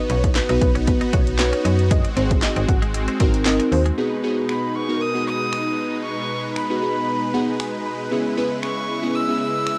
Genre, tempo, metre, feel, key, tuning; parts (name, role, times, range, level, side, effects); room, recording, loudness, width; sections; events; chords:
dance-pop; 116 BPM; 4/4; straight; B major; A4 = 440 Hz
glassy digital keys; accompaniment; 0.0-9.8 s; B3 to B5; -26 LUFS; equal; chorus, sidechain pumping, cassette tape
supersaw chords; sustained chords; 0.0-9.8 s; B2 to B4; -30 LUFS; equal; sidechain pumping, cassette tape
unison lead; melody; 0.1-3.8 s; B4 to F#5; -31 LUFS; equal; cassette tape, analog delay
twelve-string electric guitar; riff; 0.1-4.0 s; G#3 to F#4; -34 LUFS; equal; subtle chorus, cassette tape
slap-like FM bass; bass; 0.1-3.9 s; G#1 to F#2; -24 LUFS; equal; sidechain pumping
punchy analog drum machine; drums; 0.1-9.8 s; finger snaps, handclaps, hi-hat, kick drum, snare drum; -23 LUFS; equal; cassette tape
warm violin; melody; 4.5-9.8 s; B5 to E6; -28 LUFS; equal; cassette tape
moderate studio reverb, RT60 0.6 s; home recording on cassette; -21 LUFS; mono
0.0-4.0 A section; 4.0-9.8 B section
synth keys fill 7.1-8.1
0.0 B; 1.9 G#7; 4.0 B6; 8.1 C#m7